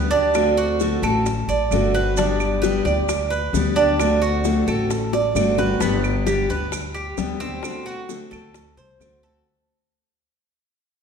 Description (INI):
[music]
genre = latin, Cuban son and guajira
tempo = 132 BPM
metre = 4/4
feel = straight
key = G major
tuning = A4 = 441 Hz
[part]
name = picked steel-string acoustic guitar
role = accompaniment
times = 0.0-9.5 s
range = D3 to G4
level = -24 LUFS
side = left 4 dB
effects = none
[part]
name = Cuban tres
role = arpeggios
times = 0.0-9.5 s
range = B3 to D5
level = -22 LUFS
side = right 5 dB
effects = none
[part]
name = upright bass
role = bass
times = 0.0-9.4 s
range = G1 to D2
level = -25 LUFS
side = left 1 dB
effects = none
[part]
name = maracas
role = percussion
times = 0.1-9.5 s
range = none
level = -37 LUFS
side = right 6 dB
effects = none
[part]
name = bongos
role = percussion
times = 0.3-9.2 s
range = none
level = -29 LUFS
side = left 5 dB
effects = none
[part]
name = claves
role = percussion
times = 0.4-9.2 s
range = none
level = -34 LUFS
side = right 1 dB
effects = none
[sound]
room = wet recital hall reverb, RT60 1.4 s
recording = recorded in a church or concert hall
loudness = -18 LUFS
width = side -6 dB against mid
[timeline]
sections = 0.0-5.8 A section; 5.8-9.5 B section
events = drum fill 5.1-5.8; fade-out 5.8-9.5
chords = 0.3 D7; 2.2 G; 4.0 D7; 5.8 G; 7.6 D7